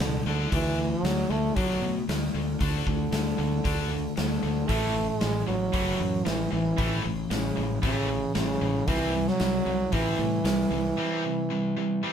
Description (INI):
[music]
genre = classic rock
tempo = 115 BPM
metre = 4/4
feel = straight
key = unclear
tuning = A4 = 440 Hz
[part]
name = clear French horn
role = melody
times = 0.0-12.1 s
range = C#3 to A3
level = -29 LUFS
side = right 3 dB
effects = none
[part]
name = tight distorted guitar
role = riff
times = 0.0-12.1 s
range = E2 to D4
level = -31 LUFS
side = left 7 dB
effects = distortion
[part]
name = growling fingered electric bass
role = bass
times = 0.0-10.9 s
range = F#1 to B2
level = -30 LUFS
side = equal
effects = overdrive
[part]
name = big rock drum kit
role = drums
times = 0.0-10.6 s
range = hi-hat, kick drum, snare drum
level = -31 LUFS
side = equal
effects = none
[part]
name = crunchy overdriven guitar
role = riff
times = 4.7-12.1 s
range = A2 to C4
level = -33 LUFS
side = right 8 dB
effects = none
[sound]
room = light reverb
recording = band playing live in one room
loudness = -24 LUFS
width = side -8 dB against mid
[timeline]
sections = 0.0-12.1 A section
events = break 11.0-12.1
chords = 0.3 D5; 4.7 A; 8.9 C